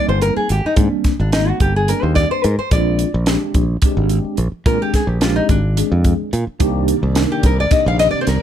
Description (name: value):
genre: electric jazz fusion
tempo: 216 BPM (eighths)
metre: 7/8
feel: straight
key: unclear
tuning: A4 = 441 Hz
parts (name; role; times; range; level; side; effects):
- nylon-string guitar; melody; 0.0-8.4 s; D4 to F5; -19 LUFS; left 2 dB; slapback echo
- tine electric piano; accompaniment; 0.0-8.2 s; G3 to Bb4; -21 LUFS; equal; medium stereo tremolo, phaser
- modern bright fingered electric bass; bass; 0.1-8.4 s; G1 to Bb2; -17 LUFS; equal; none
- crisp fusion drum kit; drums; 0.2-8.4 s; hi-hat, kick drum, snare drum; -18 LUFS; equal; none
- phased string machine; sustained chords; 6.8-8.4 s; C3 to D5; -25 LUFS; equal; ensemble chorus, phaser
room: light reverb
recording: none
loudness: -14 LUFS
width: side -10 dB against mid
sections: 0.0-8.4 A section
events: nylon-string guitar solo 0.0-8.4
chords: 0.0 Abmaj7; 2.7 Bb9; 6.6 Cm9